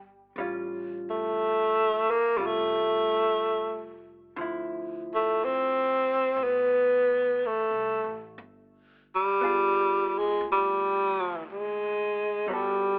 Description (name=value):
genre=jazz ballad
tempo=60 BPM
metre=4/4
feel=swing 68% on 8ths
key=unclear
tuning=A4 = 441 Hz
part: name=breathy tenor saxophone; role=melody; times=0.0-13.0 s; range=F#3 to C4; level=-26 LUFS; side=equal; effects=none
part: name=vintage hollow-body jazz guitar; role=accompaniment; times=0.0-13.0 s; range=D3 to A4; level=-38 LUFS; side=equal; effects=none
part: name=upright bass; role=bass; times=0.0-13.0 s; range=E#1 to D2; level=-54 LUFS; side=equal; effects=none
room=light reverb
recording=telephone sound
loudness=-27 LUFS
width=mono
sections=0.0-12.5 A section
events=none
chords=0.4 Aaug7; 4.4 Dm9; 8.4 G7b9; 12.5 Gmaj9